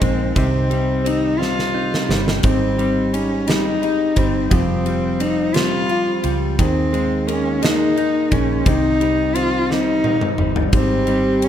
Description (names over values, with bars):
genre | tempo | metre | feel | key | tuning
six-eight pop ballad | 58 BPM (dotted quarters) | 6/8 | straight | Ab major | A4 = 440 Hz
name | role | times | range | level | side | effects
dark cello | melody | 0.0-11.5 s | C4 to F4 | -20 LUFS | left 1 dB | none
direct-recorded clean electric guitar | accompaniment | 0.0-11.5 s | C3 to F4 | -22 LUFS | equal | double-tracked left and right
fingerpicked plugged-in steel-string acoustic guitar | arpeggios | 0.0-11.5 s | F2 to Ab4 | -28 LUFS | equal | none
vintage muted fingered electric bass | bass | 0.0-11.5 s | F1 to Eb2 | -25 LUFS | equal | none
huge arena drum kit | drums | 0.0-11.5 s | kick drum, ride cymbal, snare drum, toms | -22 LUFS | equal | none
mellow French horn section | second line | 10.7-11.5 s | G4 | -24 LUFS | right 3 dB | none
room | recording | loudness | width
light reverb, studio ambience | rough home demo mix | -16 LUFS | side -10 dB against mid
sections
0.0-11.5 A section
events
drum fill 1.4-2.4, 9.7-10.7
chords
0.4 Cm; 2.4 Abmaj7; 4.5 Fsus2; 6.6 Ebsus4; 8.7 Cm; 10.7 Abmaj7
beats
| 0.36 1.40 | 2.44 3.47 | 4.51 5.55 | 6.58 7.62 | 8.66 9.69 | 10.73